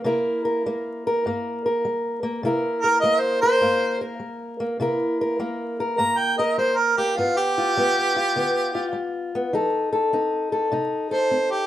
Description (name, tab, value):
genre	acoustic country blues, solo or duo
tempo	101 BPM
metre	4/4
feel	swing 67% on 8ths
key	C mixolydian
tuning	A4 = 441 Hz
part	fingerpicked old ladder-braced acoustic guitar	accompaniment	0.0-11.7 s	G2 to Bb4	-23 LUFS	left 1 dB	none
part	mellow harmonica	melody	2.8-11.7 s	F4 to Bb5	-20 LUFS	right 1 dB	none
room	moderate stone room reverb, RT60 0.9 s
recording	band playing live in one room, vinyl crackle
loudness	-20 LUFS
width	side -12 dB against mid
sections	0.0-11.7 A section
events	none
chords	0.0 C7; 7.2 G7; 9.5 F7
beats	| 0.05 0.64 1.24 1.83 | 2.42 3.01 3.61 4.20 | 4.79 5.38 5.98 6.57 | 7.16 7.75 8.34 8.94 | 9.53 10.12 10.71 11.30